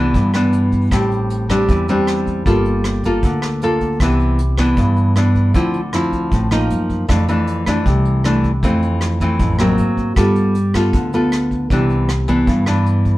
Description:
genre	bossa nova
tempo	156 BPM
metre	4/4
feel	straight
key	C major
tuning	A4 = 440 Hz
part	nylon-string guitar	accompaniment	0.0-13.2 s	F2 to A4	-16 LUFS	equal	none
part	upright bass	bass	0.0-13.2 s	G1 to Ab2	-19 LUFS	equal	none
part	vintage brush drum kit	drums	0.1-13.1 s	hi-hat, kick drum, rim click	-22 LUFS	equal	none
room	moderate studio reverb, RT60 0.7 s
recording	heard from further back in the room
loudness	-14 LUFS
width	side -17 dB against mid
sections	0.0-13.2 A section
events	none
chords	0.0 Cmaj9; 0.9 Am7; 2.5 Gm9; 4.0 Cmaj9; 5.5 Dm9; 6.7 F#6; 7.1 F6; 8.6 Fmaj7; 9.8 Ab9; 10.2 G9; 11.7 Cmaj9

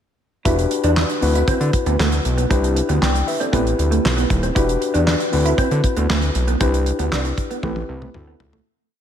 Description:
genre	early-eighties boogie funk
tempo	117 BPM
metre	4/4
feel	straight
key	unclear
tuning	A4 = 440 Hz
part	tine electric piano	accompaniment	0.4-8.7 s	C4 to G5	-22 LUFS	left 4 dB	none
part	mellow electric guitar	riff	0.5-8.6 s	A3 to E4	-24 LUFS	right 3 dB	analog chorus
part	fat analog bass	bass	0.5-8.6 s	D#1 to D3	-20 LUFS	equal	none
part	damped 70s drum kit	drums	0.5-8.7 s	handclaps, hi-hat, kick drum, snare drum, toms	-22 LUFS	equal	none
room	moderate lush hall reverb, RT60 1.7 s, small room ambience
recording	dreamy mix soaked in reverb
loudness	-16 LUFS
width	side -9 dB against mid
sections	0.5-8.7 verse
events	fade-out 6.6-8.7; drum fill 7.6-8.7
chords	0.5 Em7; 1.2 D13; 2.5 Cmaj9; 3.5 Am9; 4.6 Em7; 5.3 D13; 6.6 Cmaj9; 7.6 Am9; 8.1 D9

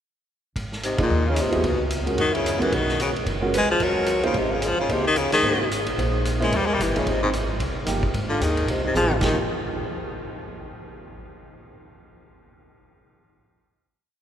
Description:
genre	jazz, small-group swing and bop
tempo	222 BPM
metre	4/4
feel	swing 59% on 8ths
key	Ab major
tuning	A4 = 440 Hz
part	upright bass	bass	0.6-9.4 s	F#1 to Gb2	-28 LUFS	equal	none
part	vintage drum kit	drums	0.6-9.3 s	crash cymbal, hi-hat, kick drum, ride cymbal, snare drum, toms	-30 LUFS	equal	none
part	bright baritone saxophone	melody	0.8-9.4 s	Ab2 to Ab3	-24 LUFS	left 2 dB	none
part	breathy alto saxophone	second line	0.8-9.4 s	Ab3 to C5	-30 LUFS	right 2 dB	none
part	warm concert grand piano	accompaniment	1.0-9.4 s	F3 to C5	-28 LUFS	right 1 dB	none
room	wet cathedral reverb, RT60 6.0 s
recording	recorded in a church or concert hall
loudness	-20 LUFS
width	side -9 dB against mid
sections	0.6-9.2 A section; 9.2-10.3 final chord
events	band accent 1.0, 5.3; drum fill 8.9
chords	0.6 Ab69; 1.6 Db5; 2.2 Gb9; 2.7 B; 3.8 Ebm; 4.3 Ab6; 4.9 Dbsus2; 6.0 Bbm9; 6.5 Eb; 7.1 Ab6; 9.2 Absus2

